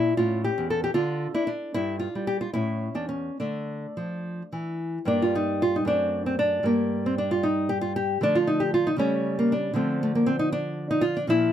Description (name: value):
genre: classical, baroque-style dance for nylon-string guitar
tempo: 70-80 BPM (dotted quarters)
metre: 6/8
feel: rubato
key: D minor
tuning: A4 = 440 Hz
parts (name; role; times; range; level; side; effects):
- nylon-string guitar; solo; 0.0-11.5 s; E2 to A4; -23 LUFS; equal; none
room: light reverb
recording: close, detailed microphones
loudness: -23 LUFS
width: side -10 dB against mid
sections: 0.0-5.1 A section; 5.1-11.5 A section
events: none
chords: 0.2 A; 1.0 N.C.; 1.7 G5; 2.6 A; 3.4 Dm; 5.1 Gm; 5.9 D7/F#; 6.7 N.C.; 8.2 Dm; 9.0 A7/C#; 9.8 Dm